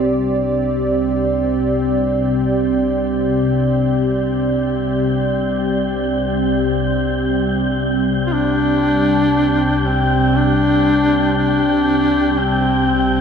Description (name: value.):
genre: dark ambient drone.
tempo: free time.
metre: none.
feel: none.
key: unclear.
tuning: A4 = 439 Hz.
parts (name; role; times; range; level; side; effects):
dark analog pad; sustained chords; 0.0-13.2 s; C4 to D5; -20 LUFS; right 1 dB; chorus.
organ-like drone; drone; 0.0-13.2 s; C2 to C3; -19 LUFS; left 1 dB; ensemble chorus, built-in reverb.
wind-like tuned noise texture; texture; 0.0-13.2 s; D4 to G5; -25 LUFS; left 1 dB; built-in reverb.
warm duduk; melody; 8.3-13.2 s; C4 to F4; -16 LUFS; left 1 dB; dub echo.
room: moderate spring reverb, RT60 2.8 s.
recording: echo-heavy mix.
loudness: -15 LUFS.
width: side -7 dB against mid.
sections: 0.1-13.2 A section.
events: fade-in on synth texture 0.1-13.2; fade-out on analog synth pad 0.1-13.2.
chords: 0.1 Csus2.